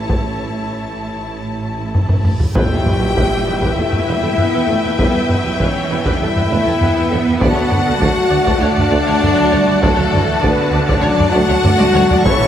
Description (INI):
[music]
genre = cinematic, epic orchestral film score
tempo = 99 BPM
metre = 4/4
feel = straight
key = E dorian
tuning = A4 = 440 Hz
[part]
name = warm symphonic violin section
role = melody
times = 0.0-12.5 s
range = G5 to A5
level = -26 LUFS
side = left 4 dB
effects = none
[part]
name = clear studio violin section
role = second line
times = 0.0-12.5 s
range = A4 to C#6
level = -25 LUFS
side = left 4 dB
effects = none
[part]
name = warm symphonic viola section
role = accompaniment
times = 0.0-12.5 s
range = E4 to F#5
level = -25 LUFS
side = right 1 dB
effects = none
[part]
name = warm French horn section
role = sustained chords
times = 0.0-12.5 s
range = E3 to C#5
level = -19 LUFS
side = left 3 dB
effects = none
[part]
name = warm symphonic cello section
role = bass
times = 0.0-12.5 s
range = A2 to B3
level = -22 LUFS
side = right 3 dB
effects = none
[part]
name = warm symphonic double bass section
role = bass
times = 0.0-12.5 s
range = A1 to E2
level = -23 LUFS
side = right 2 dB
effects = none
[part]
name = solo taiko drums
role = drums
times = 0.1-12.5 s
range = none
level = -18 LUFS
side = equal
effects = none
[part]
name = reverse cymbal and sub drop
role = sound effects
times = 2.3-5.0 s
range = none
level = -26 LUFS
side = equal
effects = none
[part]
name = warm tuba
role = bass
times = 2.5-12.3 s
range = E1 to D2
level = -24 LUFS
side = right 3 dB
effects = none
[part]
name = tam-tam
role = percussion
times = 2.5-4.9 s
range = none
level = -28 LUFS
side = equal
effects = none
[part]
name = mellow trombone section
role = sustained chords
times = 2.6-12.5 s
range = E3 to F#4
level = -27 LUFS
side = right 5 dB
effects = none
[part]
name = warm studio string section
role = sustained chords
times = 2.6-12.5 s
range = E4 to G5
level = -26 LUFS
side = left 2 dB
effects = none
[sound]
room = wet concert hall reverb, RT60 2.1 s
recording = none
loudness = -13 LUFS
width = side -10 dB against mid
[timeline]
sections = 0.0-2.6 A section; 2.6-12.5 B section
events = drum fill 1.9-2.6, 11.6-12.2; reverse cymbal 2.3; band accent 2.6-3.2; impact 2.6-5.0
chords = 0.0 A; 2.6 Em; 7.4 D